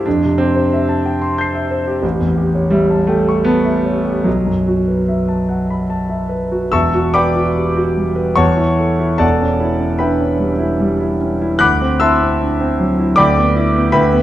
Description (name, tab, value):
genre	classical, impressionist solo piano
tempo	71-93 BPM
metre	3/4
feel	rubato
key	E dorian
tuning	A4 = 440 Hz
part	warm concert grand piano	solo	0.0-14.2 s	E1 to C7	-13 LUFS	equal	none
room	moderate recital hall reverb, RT60 1.4 s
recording	dark, warm production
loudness	-13 LUFS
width	side -13 dB against mid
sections	0.0-6.7 A section; 6.7-14.2 B section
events	none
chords	0.1 Fmaj9; 2.0 A9; 4.3 B7sus4; 6.7 Emadd9; 8.4 A/E; 9.2 Em6; 11.6 D9; 13.2 G6/D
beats	| 0.06 0.71 1.37 | 2.03 2.73 3.46 | 4.26 5.09 5.91 | 6.73 7.57 8.39 | 9.22 10.03 10.81 | 11.62 12.40 13.18 | 13.93